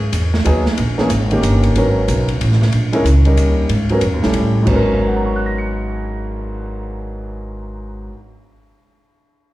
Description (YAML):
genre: jazz, small-group swing and bop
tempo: 185 BPM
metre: 3/4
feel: swing 63% on 8ths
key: G# minor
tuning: A4 = 441 Hz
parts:
  - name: archtop guitar, miked and amplified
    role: melody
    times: 0.0-0.5 s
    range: G#4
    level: -36 LUFS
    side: left 3 dB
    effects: slapback echo
  - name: upright bass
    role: bass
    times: 0.0-8.1 s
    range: G1 to A2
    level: -17 LUFS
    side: equal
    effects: none
  - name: open jazz drum kit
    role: drums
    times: 0.1-6.5 s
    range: crash cymbal, cymbal swell, hi-hat, kick drum, ride cymbal, snare drum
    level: -25 LUFS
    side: equal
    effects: none
  - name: clear upright piano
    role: accompaniment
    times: 0.4-8.4 s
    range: G#2 to C#7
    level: -19 LUFS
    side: equal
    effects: slapback echo
room: small room reverb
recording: live gig heard through the venue's PA, club reverb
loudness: -13 LUFS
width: side -16 dB against mid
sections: 0.8-4.7 A section; 4.7-6.6 B section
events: none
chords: 0.0 G#m7; 0.8 A#m7b5; 1.4 D#7; 1.8 G#m11; 2.4 N.C.; 2.7 A#m7b5; 3.4 D#7; 3.7 G#m11; 4.4 A7; 4.7 G#m11